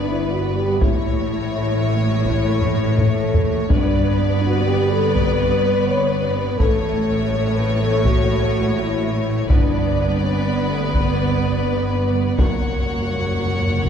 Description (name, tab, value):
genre	cinematic, epic orchestral film score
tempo	83 BPM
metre	4/4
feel	straight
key	unclear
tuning	A4 = 440 Hz
part	rich chamber violin section	melody	0.0-13.9 s	C#5 to F#5	-29 LUFS	left 5 dB	none
part	clear studio violin section	second line	0.0-13.9 s	B4 to C#5	-29 LUFS	left 2 dB	none
part	rich symphonic viola section	accompaniment	0.0-13.9 s	F#3 to B3	-27 LUFS	right 2 dB	none
part	mellow French horn section	sustained chords	0.0-13.9 s	A3 to C#5	-22 LUFS	left 2 dB	none
part	clear symphonic cello section	bass	0.0-13.9 s	F#2 to A2	-25 LUFS	right 3 dB	none
part	rich symphonic double bass section	bass	0.0-13.9 s	F#1 to A1	-24 LUFS	right 2 dB	none
part	taiko ensemble	drums	0.8-13.9 s	none	-21 LUFS	equal	none
part	timpani	percussion	12.4-13.9 s	F#2	-25 LUFS	equal	none
room	wet scoring stage reverb, RT60 1.9 s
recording	heard from further back in the room, lossy compression artefacts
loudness	-17 LUFS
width	side -8 dB against mid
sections	0.0-13.9 A section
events	drum fill 2.6-3.7; timpani fill 12.4-13.9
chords	0.0 G; 0.8 A; 3.7 G; 6.6 A; 9.5 G; 12.4 F#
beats	0.10 | 0.82 1.54 2.27 2.99 | 3.71 4.44 5.16 5.88 | 6.61 7.33 8.05 8.77 | 9.50 10.22 10.94 11.67 | 12.39 13.11 13.83